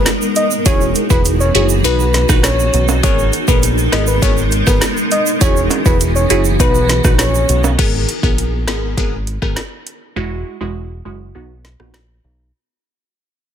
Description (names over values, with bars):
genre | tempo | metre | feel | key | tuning
dancehall | 101 BPM | 4/4 | straight | G# minor | A4 = 437 Hz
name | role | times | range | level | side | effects
wavetable chord stab | accompaniment | 0.0-12.0 s | G#3 to B4 | -20 LUFS | equal | sidechain pumping, low-pass filter
granular cloud pad | sustained chords | 0.0-7.8 s | G#3 to A#4 | -20 LUFS | right 1 dB | built-in reverb, sidechain pumping
picked electric bass | bass | 0.0-12.5 s | E1 to B1 | -17 LUFS | equal | none
afro-pop drum kit | drums | 0.1-12.1 s | crash cymbal, hi-hat, kick drum, rim click, snare drum | -16 LUFS | equal | overdrive
tube shaker and timbales | percussion | 0.1-7.8 s | none | -23 LUFS | right 8 dB | none
soft octave-layered synth lead | melody | 0.4-7.6 s | B4 to D#5 | -19 LUFS | left 1 dB | chorus, ping-pong delay
room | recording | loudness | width
digital ambience | dense, heavily limited modern master | -12 LUFS | side -9 dB against mid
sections
0.0-7.8 A section; 7.8-12.5 B section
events
fade-out 7.8-12.5; filter sweep on synth stab 7.8-12.5; break 10.2-12.5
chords
0.0 G#madd9; 0.7 Eadd9; 1.8 B; 3.0 G#madd9; 5.4 Eadd9; 6.6 B; 7.8 G#madd9; 10.2 Eadd9; 11.4 B